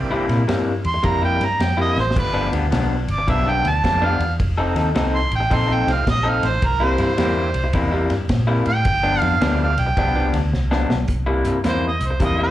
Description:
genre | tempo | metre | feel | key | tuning
electric blues shuffle | 108 BPM | 4/4 | swing 65% on 8ths | C mixolydian | A4 = 440 Hz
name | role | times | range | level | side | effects
mellow harmonica | melody | 0.0-12.5 s | Bb4 to C6 | -22 LUFS | right 3 dB | overdrive, slapback echo
overdriven tonewheel organ | accompaniment | 0.0-9.7 s | A3 to G4 | -29 LUFS | right 4 dB | slow rotary speaker, slapback echo
vintage muted fingered electric bass | bass | 0.0-12.5 s | F1 to C3 | -21 LUFS | equal | none
electric guitar through a small old amp | riff | 0.1-12.5 s | G2 to A4 | -22 LUFS | left 3 dB | slapback echo
vintage drum kit | drums | 0.3-12.4 s | hi-hat, kick drum, ride cymbal, snare drum | -25 LUFS | equal | none
room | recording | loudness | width
light reverb | live gig heard through the venue's PA, club reverb | -17 LUFS | side -13 dB against mid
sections
0.0-11.1 A section; 11.1-12.5 B section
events
harmonica solo 0.0-11.1; drum fill 1.9, 10.5-11.1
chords
0.0 C7; 2.2 G7; 4.4 F7; 6.6 C7; 8.9 G7; 11.1 C7

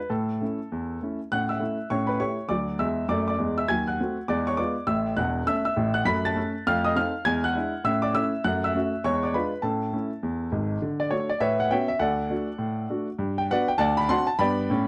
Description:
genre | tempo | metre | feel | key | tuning
jazz, stride piano | 202 BPM | 4/4 | swing 62% on 8ths | A major, D major from 10.8 s | A4 = 440 Hz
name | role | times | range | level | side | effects
clear grand piano | solo | 0.0-14.9 s | E1 to B6 | -26 LUFS | equal | slapback echo
room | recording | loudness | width
light reverb | dry, close 1970s-style studio recording | -26 LUFS | mono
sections
0.0-1.3 A section; 1.3-10.8 A section; 10.8-14.9 B section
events
none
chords
0.1 A; 1.9 A7; 2.5 D; 3.7 D#dim7; 4.3 E7b9; 4.9 A; 6.1 F#m; 6.7 F7; 7.3 E7; 7.9 A; 8.4 F#m7; 9.0 E7b9; 9.6 A; 10.8 D; 11.4 A69; 12.0 D; 13.2 Gmaj7; 13.8 D7

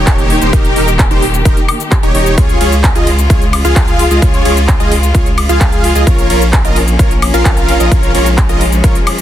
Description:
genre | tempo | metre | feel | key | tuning
EDM, festival progressive house | 130 BPM | 4/4 | straight | unclear | A4 = 439 Hz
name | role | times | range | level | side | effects
rich studio string section | sustained chords | 0.0-9.2 s | Db3 to G4 | -19 LUFS | left 2 dB | sidechain pumping
dense compressed supersaw | riff | 0.0-9.0 s | Eb4 to F5 | -15 LUFS | equal | sidechain pumping, dub echo
saturated sub bass | bass | 0.0-8.9 s | Eb1 to Db2 | -14 LUFS | equal | sidechain pumping
big-room dance drum kit | drums | 0.1-9.2 s | handclaps, hi-hat, ride cymbal, shaker, woodblock | -18 LUFS | left 1 dB | overdrive
electronic kick drum | drums | 0.1-8.9 s | none | -11 LUFS | equal | overdrive
room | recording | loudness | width
little or no reverb | dense, heavily limited modern master | -8 LUFS | side -12 dB against mid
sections
0.0-9.2 A section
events
none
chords
0.0 Eb; 2.4 Db; 6.1 Bbm

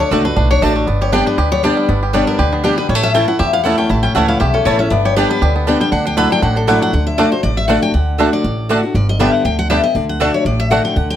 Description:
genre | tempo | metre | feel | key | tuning
bluegrass | 238 BPM | 4/4 | swing 55% on 8ths | D major | A4 = 445 Hz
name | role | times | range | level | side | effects
picked steel-string acoustic guitar | melody | 0.0-11.2 s | D4 to B5 | -18 LUFS | left 3 dB | none
picked acoustic archtop guitar | accompaniment | 0.0-11.2 s | E2 to G4 | -18 LUFS | left 2 dB | none
bluegrass banjo | arpeggios | 0.0-10.8 s | G3 to G4 | -20 LUFS | right 3 dB | none
upright bass | bass | 0.0-11.2 s | G1 to E2 | -18 LUFS | equal | none
mandolin | stabs | 0.1-10.8 s | A3 to A5 | -21 LUFS | right 5 dB | none
room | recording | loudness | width
light reverb | none | -12 LUFS | side -10 dB against mid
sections
0.0-6.9 A section; 6.9-11.2 A section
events
steel-string acoustic guitar solo 0.0-11.2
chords
0.0 D; 0.9 G; 2.9 A; 4.9 G; 5.9 Dadd9; 6.9 D; 8.9 G; 10.0 D

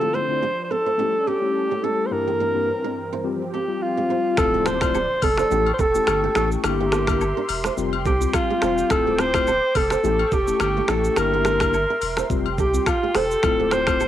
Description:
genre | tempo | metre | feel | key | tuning
afrobeats | 106 BPM | 4/4 | swing 55% on 16ths | D minor | A4 = 439 Hz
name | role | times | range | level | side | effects
breathy alto saxophone | melody | 0.0-14.1 s | F4 to C5 | -21 LUFS | right 1 dB | cassette tape, analog delay
mellow tine electric piano | accompaniment | 0.0-14.0 s | G2 to G4 | -26 LUFS | left 9 dB | medium stereo tremolo, cassette tape
warm analog pad | sustained chords | 0.0-14.1 s | G2 to D6 | -31 LUFS | right 1 dB | chorus, cassette tape
flamenco guitar | riff | 0.0-14.1 s | Bb3 to C5 | -30 LUFS | right 10 dB | cassette tape
saturated sub bass | bass | 4.4-14.1 s | D1 to C2 | -28 LUFS | right 1 dB | none
afro-pop drum kit | drums | 4.4-14.1 s | finger snaps, hi-hat, kick drum, rim click, shaker | -25 LUFS | right 1 dB | cassette tape
agogo bells and woodblock | percussion | 4.4-14.1 s | none | -31 LUFS | left 12 dB | none
impact | sound effects | 4.5-6.6 s | none | -40 LUFS | right 1 dB | none
room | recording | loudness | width
light reverb, digital ambience | home recording on cassette | -19 LUFS | side -11 dB against mid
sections
0.0-4.4 A section; 4.4-14.1 B section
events
impact 4.4-6.6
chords
0.0 Dm7; 1.0 A7; 2.1 C7/G; 3.2 Fsus2; 4.4 Dm7; 5.5 A7; 6.6 C7/G; 7.8 Fsus2; 8.9 Dm7; 10.0 A7; 11.2 C7/G; 12.3 Fsus2; 13.4 Dm7

